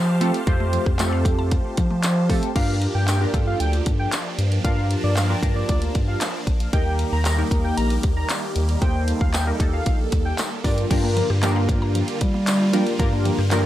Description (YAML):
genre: dance-pop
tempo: 115 BPM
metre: 4/4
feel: straight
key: G minor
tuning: A4 = 440 Hz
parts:
  - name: supersaw chords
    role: sustained chords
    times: 0.0-13.7 s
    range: D3 to A5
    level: -30 LUFS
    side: right 1 dB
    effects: phaser, sidechain pumping
  - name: saturated sub bass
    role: bass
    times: 0.0-13.7 s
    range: Bb1 to G3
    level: -22 LUFS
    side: equal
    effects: sidechain pumping
  - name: warm analog keys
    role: accompaniment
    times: 0.2-13.7 s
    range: A3 to C5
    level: -26 LUFS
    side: equal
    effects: chorus, phaser, sidechain pumping
  - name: mallet-like synth pluck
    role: arpeggios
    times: 0.2-2.4, 10.9-13.6 s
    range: F3 to Bb5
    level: -32 LUFS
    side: right 1 dB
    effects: chorus, sidechain pumping, analog delay
  - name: pop drum kit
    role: drums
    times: 0.2-13.6 s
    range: crash cymbal, handclaps, hi-hat, kick drum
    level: -24 LUFS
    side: equal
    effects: none
  - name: tambourine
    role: percussion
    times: 1.0-13.6 s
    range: none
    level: -33 LUFS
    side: left 3 dB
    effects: none
  - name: wide unison lead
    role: melody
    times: 2.6-10.8 s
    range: D5 to Bb5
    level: -30 LUFS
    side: equal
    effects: sidechain pumping, analog delay
room: little or no reverb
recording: dry, gritty hardware recording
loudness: -19 LUFS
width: side -13 dB against mid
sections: 0.0-2.6 A section; 2.6-10.9 B section; 10.9-13.7 A section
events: none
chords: 0.0 Fadd9; 2.6 Gm7; 6.7 Eb; 10.6 Gm7